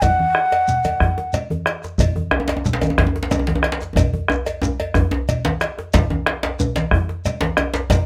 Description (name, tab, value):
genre	west african traditional, West African drum ensemble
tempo	122 BPM (dotted quarters)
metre	12/8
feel	straight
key	unclear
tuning	A4 = 443 Hz
part	breathy bansuri	melody	0.0-1.3 s	F#5	-20 LUFS	equal	none
part	bombo	percussion	0.0-8.1 s	none	-22 LUFS	equal	none
part	congas	percussion	0.0-8.1 s	none	-28 LUFS	equal	none
part	cowbell	percussion	0.0-8.1 s	none	-29 LUFS	equal	none
part	djembe	percussion	0.0-8.1 s	none	-26 LUFS	equal	none
part	shekere	percussion	0.0-8.1 s	none	-29 LUFS	equal	none
part	djembe	percussion	2.3-8.1 s	none	-25 LUFS	equal	none
room	light reverb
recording	none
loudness	-20 LUFS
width	mono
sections	0.0-5.9 A section; 5.9-8.1 B section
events	drum fill 4.0-5.9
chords	none